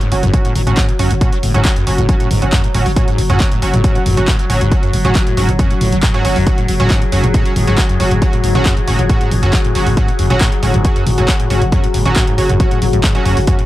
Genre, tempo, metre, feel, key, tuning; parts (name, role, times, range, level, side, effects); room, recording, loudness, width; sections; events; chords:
driving peak-time techno; 137 BPM; 4/4; straight; F# minor; A4 = 439 Hz
acid bass, saw; riff; 0.0-13.6 s; F#2 to F#3; -19 LUFS; equal; ensemble chorus, sidechain pumping
overtone-sweeping drone; drone; 0.1-13.7 s; F#3; -24 LUFS; equal; chorus, built-in reverb, sidechain pumping
punchy analog drum machine; drums; 0.0-13.7 s; handclaps, hi-hat, toms; -20 LUFS; equal; overdrive, sidechain pumping on hats, sidechain pumping on toms, sidechain pumping on cymbals
warbly tape-like pad; texture; 0.0-13.7 s; F#4 to C#5; -24 LUFS; left 7 dB; chorus, built-in reverb, sidechain pumping
sync-sweep polysynth; stabs; 0.1-13.6 s; F#3 to F#4; -20 LUFS; right 3 dB; chorus, sidechain pumping, analog delay
growling 808-style bass; bass; 0.1-13.5 s; F#1; -17 LUFS; equal; tube saturation, sidechain pumping, low-pass filter
electronic kick drum; drums; 0.3-13.6 s; -15 LUFS; equal; overdrive
little or no reverb; dry, gritty hardware recording, cassette tape; -11 LUFS; side -15 dB against mid
0.0-13.7 A section
0.0 F#5